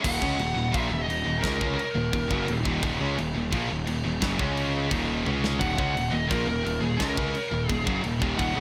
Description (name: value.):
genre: heavy metal.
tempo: 173 BPM.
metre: 4/4.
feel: straight.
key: Eb minor.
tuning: A4 = 443 Hz.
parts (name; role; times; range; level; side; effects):
high-gain lead guitar; melody; 0.0-2.6, 5.6-8.6 s; Ab4 to Gb5; -33 LUFS; equal; distortion.
heavy high-gain guitar; riff; 0.0-8.6 s; Eb2 to Db4; -35 LUFS; equal; distortion.
scooped high-gain guitar; riff; 0.0-8.6 s; Eb2 to Db4; -35 LUFS; equal; distortion.
fuzz picked electric bass; bass; 0.0-8.6 s; Eb1 to Db2; -33 LUFS; equal; overdrive.
tight metal drum kit; drums; 0.0-8.5 s; crash cymbal, kick drum, snare drum, toms; -33 LUFS; equal; none.
overdriven semi-hollow guitar; riff; 0.1-8.6 s; Eb2 to Db4; -35 LUFS; equal; none.
room: little or no reverb.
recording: none.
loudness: -26 LUFS.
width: mono.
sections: 0.0-8.6 A section.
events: half time 0.0-8.6; drum fill 5.3-5.6.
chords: 0.0 Ebm; 4.4 Db5; 4.9 Eb5; 5.3 Db5; 5.6 Ebm.